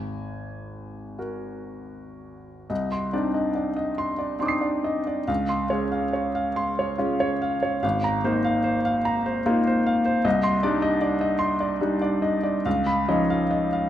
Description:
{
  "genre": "classical, impressionist solo piano",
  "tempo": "38-51 BPM (dotted quarters)",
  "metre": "6/8",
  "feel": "rubato",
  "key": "C minor",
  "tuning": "A4 = 441 Hz",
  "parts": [
    { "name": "clear grand piano", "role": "solo", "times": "0.0-13.9 s", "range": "G#1 to C7", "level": "-22 LUFS", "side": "equal", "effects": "none" }
  ],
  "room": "moderate recital hall reverb, RT60 1.5 s",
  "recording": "none",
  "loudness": "-22 LUFS",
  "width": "side -11 dB against mid",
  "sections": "0.0-2.7 A section; 2.7-13.9 B section",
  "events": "none",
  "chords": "0.0 G#sus2; 2.7 Cmadd9; 5.3 Dbmaj7; 7.8 Ab69; 10.3 Cmadd9; 12.7 C#9",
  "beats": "1.19 | 2.70 3.99 | 5.29 6.58 | 7.84 9.05 | 10.25 11.43 | 12.66"
}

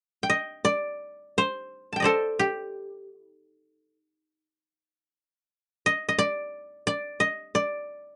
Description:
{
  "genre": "japanese traditional, Japanese chamber music",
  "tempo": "82-91 BPM",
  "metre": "4/4",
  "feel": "rubato",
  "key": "D in sen",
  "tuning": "A4 = 441 Hz",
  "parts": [
    { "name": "koto", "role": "solo", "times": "0.2-8.2 s", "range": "G4 to A5", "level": "-27 LUFS", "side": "equal", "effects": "none" }
  ],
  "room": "little or no reverb",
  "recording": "nothing above 10.7 kHz",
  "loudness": "-27 LUFS",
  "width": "mono",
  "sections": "0.0-8.2 A section",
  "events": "none",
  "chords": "none",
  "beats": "0.66 1.38 | 2.10 2.79 3.48 4.16 | 4.83 5.50 6.17 6.86 | 7.55"
}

